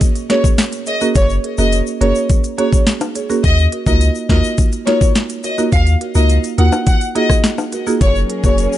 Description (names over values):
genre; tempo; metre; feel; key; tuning
dancehall; 105 BPM; 4/4; straight; F# major; A4 = 444 Hz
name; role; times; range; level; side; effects
island pop drum kit; drums; 0.0-8.7 s; hi-hat, kick drum, rim click, snare drum; -15 LUFS; equal; overdrive
tube shaker and timbales; percussion; 0.0-8.8 s; none; -27 LUFS; left 6 dB; none
rich studio violin section; melody; 0.3-8.5 s; C#5 to F#5; -20 LUFS; left 2 dB; ping-pong delay
buzzing marimba with medium mallets; accompaniment; 0.3-8.6 s; A#3 to C#5; -19 LUFS; right 4 dB; none
punchy sub bass; bass; 1.2-8.7 s; E#1 to D#2; -14 LUFS; equal; none
dark studio string section; sustained chords; 8.0-8.8 s; F#3 to A#4; -26 LUFS; left 2 dB; sidechain pumping
room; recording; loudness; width
small room ambience; nothing above 10.6 kHz; -12 LUFS; side -13 dB against mid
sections
0.0-8.8 A section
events
none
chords
0.0 F#add9; 3.4 D#madd9; 8.0 F#add9